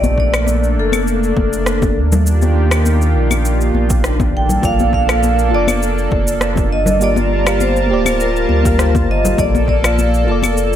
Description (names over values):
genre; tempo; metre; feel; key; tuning
sunset chillout; 101 BPM; 4/4; swing 54% on 16ths; Bb major; A4 = 439 Hz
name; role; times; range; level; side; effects
vibraphone with medium hard mallets; melody; 0.0-10.8 s; A4 to G5; -19 LUFS; left 1 dB; digital delay
lush unison pad; sustained chords; 0.0-10.8 s; Eb3 to A5; -20 LUFS; right 1 dB; chorus
warm sub bass; bass; 0.0-10.8 s; D1 to Eb2; -16 LUFS; equal; none
electronic shaker, rim click and claves; drums; 0.0-10.8 s; none; -22 LUFS; left 1 dB; overdrive, studio reverb
congas; percussion; 0.0-10.5 s; none; -23 LUFS; left 4 dB; none
electronic kick drum; drums; 0.2-9.8 s; none; -20 LUFS; equal; overdrive, studio reverb
mellow FM electric piano; accompaniment; 4.6-10.8 s; Bb3 to F5; -20 LUFS; moving between left 5 dB and right 4 dB; chorus, auto-pan, digital delay
room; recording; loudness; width
light reverb, digital ambience; none; -12 LUFS; side -10 dB against mid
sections
0.0-10.8 A section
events
none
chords
0.0 Bbmaj7; 2.3 Ebmaj7; 4.3 Bbmaj7; 7.0 Gm7; 9.4 Bbmaj7